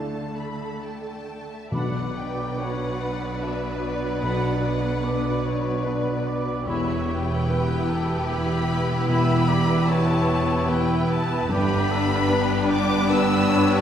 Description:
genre	cinematic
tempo	74 BPM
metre	3/4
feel	rubato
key	B minor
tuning	A4 = 440 Hz
part	warm studio violin section	melody	0.0-13.8 s	D5 to E6	-32 LUFS	left 2 dB	none
part	mellow clarinet	second line	0.0-13.8 s	D4 to E4	-34 LUFS	left 1 dB	none
part	rich studio violin section	second line	0.0-13.8 s	G4 to B5	-30 LUFS	left 1 dB	none
part	felt-muted upright piano	accompaniment	0.0-13.8 s	E1 to D5	-29 LUFS	left 1 dB	none
part	rich studio viola section	accompaniment	0.0-13.8 s	F#3 to A4	-31 LUFS	right 1 dB	none
part	warm studio cello section	bass	0.0-13.8 s	E2 to D3	-28 LUFS	right 1 dB	none
part	mellow cor anglais	second line	1.7-13.8 s	G4 to E5	-31 LUFS	right 1 dB	none
part	small flute group	second line	1.7-13.8 s	B5	-35 LUFS	left 1 dB	none
part	mellow French horn section	sustained chords	1.7-13.8 s	B3 to E4	-30 LUFS	left 3 dB	none
part	clear studio double bass section	bass	1.7-13.8 s	E1 to B1	-30 LUFS	right 3 dB	none
part	timpani	percussion	1.7-3.0 s	B2	-32 LUFS	left 1 dB	none
room	wet concert hall reverb, RT60 2.3 s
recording	heard from further back in the room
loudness	-21 LUFS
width	side -9 dB against mid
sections	0.0-1.7 A section; 1.7-13.8 A section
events	none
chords	0.0 Dm; 1.7 Bm; 6.7 Em; 11.5 G

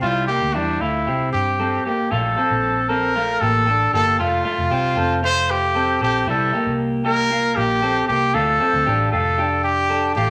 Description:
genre	jangly indie pop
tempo	116 BPM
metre	4/4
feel	straight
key	unclear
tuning	A4 = 439 Hz
part	clear trumpet	melody	0.0-10.3 s	D4 to C5	-22 LUFS	equal	none
part	electric guitar through a small old amp	arpeggios	0.0-10.3 s	G3 to A4	-25 LUFS	equal	none
part	vintage muted fingered electric bass	bass	0.0-10.3 s	F1 to G2	-28 LUFS	equal	none
room	wet studio reverb, RT60 0.9 s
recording	none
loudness	-19 LUFS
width	mono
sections	0.0-2.1 A section; 2.1-10.3 B section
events	none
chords	0.0 Cadd9; 2.1 Bbmaj7; 4.2 F; 6.3 C7; 8.3 Dm

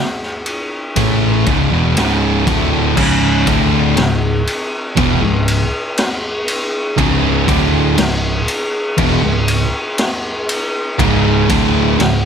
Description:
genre	stoner and doom metal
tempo	60 BPM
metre	4/4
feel	straight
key	C# minor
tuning	A4 = 441 Hz
part	raw garage drum kit	drums	0.2-12.2 s	crash cymbal, kick drum, ride cymbal, snare drum	-18 LUFS	left 1 dB	none
part	distorted electric guitar	riff	1.0-12.3 s	C#2 to A3	-19 LUFS	equal	overdrive
part	thick fuzz guitar	riff	1.0-12.3 s	C#2 to A3	-19 LUFS	left 11 dB	distortion
part	thick fuzz guitar	riff	1.0-12.3 s	C#2 to A3	-17 LUFS	right 10 dB	distortion
part	overdriven picked electric bass	bass	1.0-12.3 s	C#1 to A1	-20 LUFS	equal	none
room	little or no reverb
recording	none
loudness	-13 LUFS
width	side -7 dB against mid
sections	0.0-3.0 A section; 3.0-12.3 B section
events	none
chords	0.0 C#m

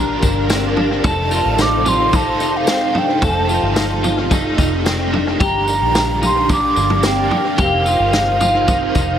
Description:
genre	dream pop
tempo	110 BPM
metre	4/4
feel	straight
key	F mixolydian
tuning	A4 = 440 Hz
part	mellow hollow concert flute	melody	0.0-9.2 s	F5 to D6	-19 LUFS	right 2 dB	tape echo
part	cranked stack guitar	accompaniment	0.0-9.2 s	F2 to Eb4	-25 LUFS	right 4 dB	overdrive, tremolo, ensemble chorus
part	ensemble organ-string	sustained chords	0.0-9.2 s	D4 to F5	-23 LUFS	left 1 dB	ensemble chorus
part	clean electric guitar	arpeggios	0.0-9.2 s	C4 to A4	-21 LUFS	left 3 dB	analog chorus, tape echo
part	vintage muted fingered electric bass	bass	0.0-9.2 s	F1 to Bb1	-22 LUFS	equal	none
part	backwards swelling texture	texture	0.0-3.3, 9.0-9.2 s	Bb4 to D5	-29 LUFS	left 1 dB	built-in reverb, tape echo
part	vintage drum kit	drums	0.2-9.1 s	kick drum, snare drum, tambourine, toms	-20 LUFS	equal	tape echo
room	moderate spring reverb, RT60 2.1 s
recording	echo-heavy mix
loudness	-14 LUFS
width	side -9 dB against mid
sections	0.0-9.2 A section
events	none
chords	0.0 Gm7; 1.0 F7; 5.4 Gm7; 7.6 F7sus4

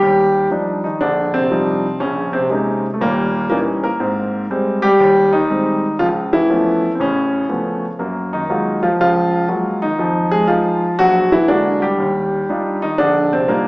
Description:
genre	solo jazz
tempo	120 BPM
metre	4/4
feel	swing 66% on 8ths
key	Eb major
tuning	A4 = 440 Hz
part	warm concert grand piano	solo	0.0-13.7 s	A1 to Bb4	-14 LUFS	equal	none
room	wet recital hall reverb, RT60 1.5 s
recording	recorded in a church or concert hall, small speaker sound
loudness	-14 LUFS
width	side -23 dB against mid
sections	0.0-13.7 A section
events	none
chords	0.0 Ebmaj9; 2.0 Bbm11; 3.0 Eb7b9; 4.0 Abmaj7; 6.0 Db7alt; 8.0 Gbmaj9; 10.0 Fm7; 11.0 Bbaug7; 12.0 Ebmaj9

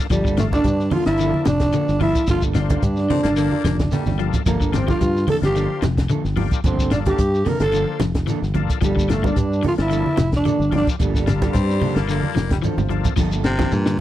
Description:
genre	afrobeat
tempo	110 BPM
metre	4/4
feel	swing 54% on 16ths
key	G dorian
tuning	A4 = 440 Hz
part	overdriven tonewheel organ	accompaniment	0.0-13.7 s	F3 to C5	-31 LUFS	left 12 dB	chorus vibrato
part	electric guitar at the edge of break-up	arpeggios	0.0-14.0 s	C3 to G3	-27 LUFS	left 7 dB	none
part	trombone with bucket mute	melody	0.1-12.6 s	G3 to Bb4	-22 LUFS	right 1 dB	none
part	growling tenor saxophone	second line	0.1-12.6 s	G3 to Bb4	-30 LUFS	right 3 dB	none
part	electric guitar at the edge of break-up	stabs	0.1-13.8 s	F3 to A4	-30 LUFS	right 8 dB	none
part	fingered electric bass	bass	0.1-14.0 s	F1 to G2	-22 LUFS	equal	none
part	compact cocktail drum kit	drums	0.1-14.0 s	crash cymbal, hi-hat, kick drum, ride cymbal, snare drum	-23 LUFS	equal	none
part	shekere	percussion	0.1-14.0 s	none	-28 LUFS	left 2 dB	none
part	congas	percussion	0.4-13.7 s	none	-26 LUFS	right 3 dB	none
part	raspy baritone saxophone	second line	3.1-4.3, 11.5-13.1 s	F3 to C4	-29 LUFS	left 11 dB	none
part	raspy baritone saxophone	melody	13.5-14.0 s	Bb2 to C3	-23 LUFS	equal	none
room	studio ambience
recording	dry, close 1970s-style studio recording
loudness	-17 LUFS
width	side -13 dB against mid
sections	0.0-13.2 A section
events	drum fill 3.6-4.5, 12.4-13.2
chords	0.0 Gm9

